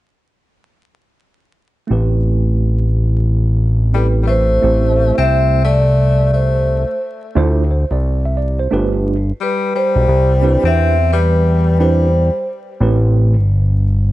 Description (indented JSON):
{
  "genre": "hip hop",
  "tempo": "88 BPM",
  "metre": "4/4",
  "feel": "swing 64% on 16ths",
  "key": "A minor",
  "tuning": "A4 = 440 Hz",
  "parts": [
    { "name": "mellow tine electric piano", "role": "accompaniment", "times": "1.9-13.3 s", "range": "A3 to E5", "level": "-21 LUFS", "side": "right 4 dB", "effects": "medium stereo tremolo" },
    { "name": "fat analog bass", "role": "bass", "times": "1.9-14.1 s", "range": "G1 to E2", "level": "-14 LUFS", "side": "equal", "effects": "none" },
    { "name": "breathy tenor saxophone", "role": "second line", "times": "3.9-12.4 s", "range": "G3 to C4", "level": "-22 LUFS", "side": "left 7 dB", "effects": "tape echo" },
    { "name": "vibraphone with soft mallets", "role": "melody", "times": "4.0-12.4 s", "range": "B4 to E5", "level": "-18 LUFS", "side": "right 1 dB", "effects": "tape echo" }
  ],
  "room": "light reverb",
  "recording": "vinyl crackle, nothing above 10.7 kHz",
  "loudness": "-12 LUFS",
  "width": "side -16 dB against mid",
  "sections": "1.9-4.6 A section; 4.6-14.1 B section",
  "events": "none",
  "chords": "1.9 Am7; 7.4 Dm7; 8.7 G7; 10.1 Cmaj7; 12.8 Am7",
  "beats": "| 1.90 2.58 3.27 3.95 | 4.63 5.31 5.99 6.67 | 7.36 8.04 8.72 9.40 | 10.08 10.77 11.45 12.13 | 12.81 13.49"
}